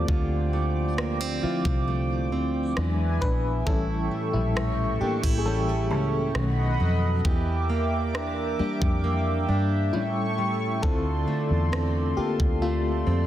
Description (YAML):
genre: contemporary R&B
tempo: 67 BPM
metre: 4/4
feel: straight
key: D minor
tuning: A4 = 440 Hz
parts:
  - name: FM electric piano with tremolo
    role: accompaniment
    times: 0.0-13.3 s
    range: D3 to B4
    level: -30 LUFS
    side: left 4 dB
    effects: none
  - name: chorused pulse-width pad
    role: sustained chords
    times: 0.0-13.3 s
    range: A4 to D6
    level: -31 LUFS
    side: equal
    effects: none
  - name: fingerpicked plugged-in steel-string acoustic guitar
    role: arpeggios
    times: 0.0-13.3 s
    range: A2 to G4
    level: -30 LUFS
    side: right 4 dB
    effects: none
  - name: vintage muted fingered electric bass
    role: bass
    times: 0.0-13.3 s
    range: A1 to G2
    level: -26 LUFS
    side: equal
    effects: none
  - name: trap drum kit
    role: drums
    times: 0.1-12.6 s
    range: kick drum, rim click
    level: -28 LUFS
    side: equal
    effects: none
room: light reverb, digital ambience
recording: dense, heavily limited modern master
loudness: -23 LUFS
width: side -12 dB against mid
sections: 0.0-13.3 A section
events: FM electric piano solo 0.0-13.3; break 9.9-10.8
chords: 0.0 Dm7; 2.8 E7; 3.7 A7; 6.4 B7; 7.2 Em7b5; 9.9 A7; 10.8 Dm7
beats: | 0.08 0.98 1.88 2.77 | 3.67 4.56 5.46 6.35 | 7.25 8.14 9.04 9.94 | 10.83 11.73 12.62